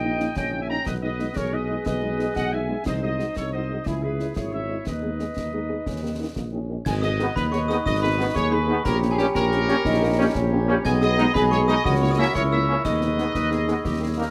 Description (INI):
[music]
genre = military-style march for wind band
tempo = 120 BPM (dotted quarters)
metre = 6/8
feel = straight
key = G# minor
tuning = A4 = 442 Hz
[part]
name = mellow trumpet section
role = melody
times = 0.0-14.3 s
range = G4 to A#5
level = -32 LUFS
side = equal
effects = none
[part]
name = clear euphonium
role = second line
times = 0.0-14.3 s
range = A#3 to G#4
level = -31 LUFS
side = equal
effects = none
[part]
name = clear woodwind section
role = second line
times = 0.0-14.3 s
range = E4 to G5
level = -36 LUFS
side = equal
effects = none
[part]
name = mellow French horn section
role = accompaniment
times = 0.0-14.2 s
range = G#3 to G#4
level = -32 LUFS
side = equal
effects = none
[part]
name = mellow tuba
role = bass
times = 0.0-14.3 s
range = G#1 to D#2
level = -28 LUFS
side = equal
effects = none
[part]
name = concert snare drum, concert bass drum and clash cymbals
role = drums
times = 0.2-14.3 s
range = none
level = -34 LUFS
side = equal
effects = none
[part]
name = glockenspiel with brass mallets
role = second line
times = 6.9-14.3 s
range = G5 to G#6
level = -32 LUFS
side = equal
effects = none
[part]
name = warm trombone section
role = sustained chords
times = 7.2-14.2 s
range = D#3 to D#4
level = -32 LUFS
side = equal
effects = none
[sound]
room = light reverb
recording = none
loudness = -23 LUFS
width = mono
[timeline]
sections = 0.0-6.9 A section; 6.9-14.3 B section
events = none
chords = 0.0 D#7/A#; 0.9 G#m/B; 2.9 G#7/B#; 3.9 C#m; 4.9 G#m/D#; 5.9 D#; 6.9 G#m; 8.9 Gdim/Bb; 10.9 G#m/B; 11.8 A#dim/C#; 12.8 G#m/D#